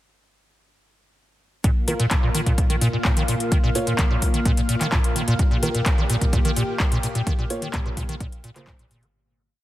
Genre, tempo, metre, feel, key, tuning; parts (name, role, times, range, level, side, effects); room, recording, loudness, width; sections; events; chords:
acid house; 128 BPM; 4/4; straight; A4 = 440 Hz
lush unison pad; sustained chords; 1.6-9.1 s; Bb2 to F5; -29 LUFS; left 1 dB; chorus, sidechain pumping
acid bass, square; riff; 1.6-9.1 s; Bb2 to F3; -24 LUFS; equal; wide subtle chorus, tape echo
electro analog drum machine; drums; 1.6-9.1 s; handclaps, hi-hat; -28 LUFS; left 1 dB
electronic kick drum; drums; 1.6-8.8 s; -21 LUFS; equal; overdrive
dark grand piano; stabs; 1.9-8.6 s; Bb3 to Db5; -29 LUFS; right 1 dB; tape echo
light reverb, digital ambience; dense, heavily limited modern master; -19 LUFS; side -15 dB against mid
1.6-9.1 groove
fade-out 6.6-9.1
1.6 Bb5